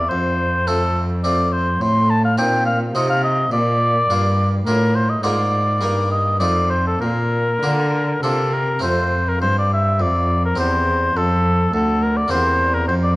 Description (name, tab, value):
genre	classical, baroque-style sonata movement with continuo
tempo	104 BPM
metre	3/4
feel	rubato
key	Bb major, F major from 8.8 s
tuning	A4 = 443 Hz
part	mellow oboe	melody	0.0-13.2 s	A4 to C6	-19 LUFS	left 1 dB	none
part	harpsichord	accompaniment	0.0-13.2 s	D2 to Bb4	-24 LUFS	equal	none
part	dark cello	bass	0.0-13.2 s	D2 to D3	-20 LUFS	equal	none
room	moderate recital hall reverb, RT60 1.7 s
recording	worn, warbling old tape, cassette tape, warbly pitch drift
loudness	-16 LUFS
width	side -20 dB against mid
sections	0.0-8.8 A section; 8.8-13.2 A section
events	none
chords	0.1 F; 1.8 F7/A; 3.5 Bb; 5.2 Bb7/Ab; 5.8 Eb/G; 6.4 F7; 7.0 Bb; 8.8 F; 10.6 C/E; 12.3 C7/E